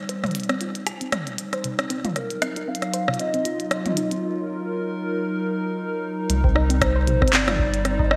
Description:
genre	IDM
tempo	116 BPM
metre	4/4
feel	swing 56% on 16ths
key	unclear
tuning	A4 = 440 Hz
part	hollow soft pad	sustained chords	0.0-8.2 s	Gb3 to C5	-30 LUFS	equal	chorus, vintage 12-bit sampler grit
part	warbly dusty pluck	arpeggios	0.1-8.2 s	C3 to C5	-32 LUFS	equal	chorus, delay
part	glitchy drum kit	drums	0.1-8.2 s	handclaps, hi-hat, rim click, toms	-27 LUFS	equal	digital delay
part	warbly nostalgic lead	melody	2.2-8.2 s	Bb4 to F5	-30 LUFS	equal	lush chorus, delay
part	warm sub bass	bass	6.3-8.2 s	G1 to C2	-25 LUFS	equal	none
part	electronic kick drum	drums	6.4-8.1 s	none	-25 LUFS	equal	none
room	moderate lush hall reverb, RT60 2.0 s, digital ambience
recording	bright 1980s-style digital production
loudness	-24 LUFS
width	mono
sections	0.0-6.3 A section; 6.3-8.2 B section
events	filter sweep on analog synth pad 0.0-6.3; break 4.2-6.3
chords	0.0 Cm; 2.2 Ebmadd9; 6.3 Cmadd9

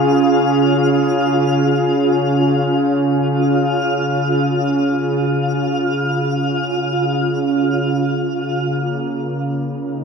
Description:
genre	ambient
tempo	free time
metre	none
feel	none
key	Db major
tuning	A4 = 445 Hz
part	warm analog pad	sustained chords	0.0-10.0 s	Db3 to Ab4	-16 LUFS	right 1 dB	wide subtle chorus
part	twinkling granular texture	texture	0.0-8.2 s	F4 to F5	-21 LUFS	equal	built-in reverb
room	wet concert hall reverb, RT60 2.2 s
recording	none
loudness	-15 LUFS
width	side -5 dB against mid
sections	0.0-8.2 A section; 8.2-10.0 B section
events	none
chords	0.0 Db; 8.2 Cm7/Db (rootless)

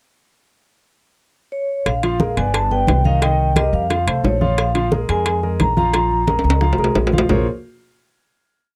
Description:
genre	Afro-Cuban jazz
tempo	177 BPM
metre	4/4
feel	straight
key	Bb minor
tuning	A4 = 440 Hz
part	vibraphone with medium mallets	melody	1.5-6.9 s	Db5 to Bb5	-23 LUFS	equal	none
part	upright bass	bass	1.9-7.5 s	G1 to F2	-22 LUFS	equal	none
part	bongos	percussion	1.9-7.4 s	none	-28 LUFS	equal	none
part	congas	percussion	1.9-7.4 s	none	-25 LUFS	equal	none
part	timbales	percussion	1.9-7.4 s	none	-26 LUFS	equal	none
part	warm concert grand piano	accompaniment	2.0-7.5 s	Eb3 to F5	-25 LUFS	equal	none
room	little or no reverb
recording	dry, close 1970s-style studio recording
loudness	-18 LUFS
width	mono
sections	0.5-1.9 pickup bar; 1.9-7.3 A section; 7.3-8.7 final chord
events	drum fill 6.3-7.3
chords	0.5 N.C.; 1.9 Bb5; 2.5 G; 3.2 Cm7; 3.9 F; 4.6 Bb7(no3); 7.3 Bbm9

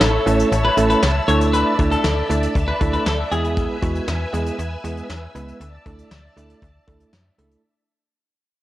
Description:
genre	synth-pop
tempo	118 BPM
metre	4/4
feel	straight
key	unclear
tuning	A4 = 440 Hz
part	clean electric guitar	second line	0.0-3.4 s	G#4 to C#5	-22 LUFS	left 2 dB	cassette tape, tape echo
part	string machine, violas	sustained chords	0.0-7.6 s	B4 to E6	-26 LUFS	left 1 dB	ensemble chorus, cassette tape
part	slap-like FM bass	bass	0.0-7.6 s	A1 to F#2	-22 LUFS	equal	none
part	soft brush drum kit	drums	0.0-7.6 s	hi-hat, kick drum, snare drum	-24 LUFS	equal	cassette tape
part	bell-like tine electric piano	accompaniment	0.3-7.6 s	G#3 to B4	-22 LUFS	right 2 dB	cassette tape
room	wet spring reverb, RT60 1.5 s, small room reverb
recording	home recording on cassette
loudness	-17 LUFS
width	side -15 dB against mid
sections	0.0-7.6 A section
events	fade-out 0.0-7.6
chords	0.0 A; 1.3 Dsus2; 3.3 E; 5.6 Dsus2

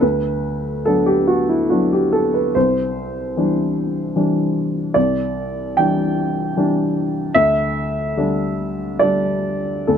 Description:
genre	neoclassical minimalist piano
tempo	73 BPM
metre	3/4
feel	uneven beats, rubato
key	unclear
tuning	A4 = 435 Hz
part	warm upright piano	solo	0.0-10.0 s	C2 to G5	-16 LUFS	equal	none
room	light reverb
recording	close, detailed microphones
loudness	-16 LUFS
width	side -8 dB against mid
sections	0.0-10.0 A section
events	none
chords	0.0 Bm/D; 2.5 Cadd9; 7.4 Dsus4

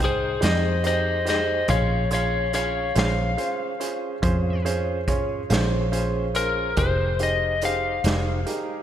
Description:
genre	slow blues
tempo	47 BPM (dotted quarters)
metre	12/8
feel	straight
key	unclear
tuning	A4 = 440 Hz
part	lightly driven lead guitar	melody	0.0-8.8 s	Ab4 to F5	-25 LUFS	left 4 dB	none
part	bright upright piano	accompaniment	0.0-8.8 s	Db4 to C6	-28 LUFS	right 3 dB	none
part	vintage muted fingered electric bass	bass	0.0-8.4 s	F1 to F2	-25 LUFS	equal	none
part	raw garage drum kit	drums	0.0-8.7 s	hi-hat, kick drum, snare drum	-28 LUFS	right 1 dB	none
room	moderate lush hall reverb, RT60 2.1 s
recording	dreamy mix soaked in reverb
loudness	-21 LUFS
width	side -10 dB against mid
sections	0.0-8.8 A section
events	lead electric guitar solo 0.0-8.8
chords	0.0 Fm7; 1.7 Bbm7; 6.8 Fm7

